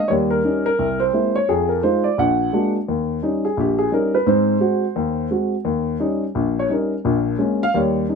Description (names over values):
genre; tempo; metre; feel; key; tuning
jazz; 172 BPM; 4/4; swing 62% on 8ths; Eb mixolydian; A4 = 440 Hz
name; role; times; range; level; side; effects
dark baby grand piano; solo; 0.0-8.2 s; Bb1 to F#5; -17 LUFS; equal; none
room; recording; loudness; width
light reverb; minimal, uncompressed stereo recording; -17 LUFS; side -5 dB against mid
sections
0.0-2.9 A section; 2.9-8.2 B section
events
grand piano solo 2.9-8.2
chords
0.1 Eb7; 0.8 Caug7; 1.5 Fm7; 2.2 Bbaug7; 2.9 Eb7; 4.3 Ab7; 5.7 Eb7; 7.0 Bbm7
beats
| 0.09 0.44 0.79 1.13 | 1.48 1.83 2.18 2.52 | 2.87 3.22 3.57 3.91 | 4.26 4.61 4.96 5.30 | 5.65 6.00 6.35 6.70 | 7.04 7.39 7.74 8.09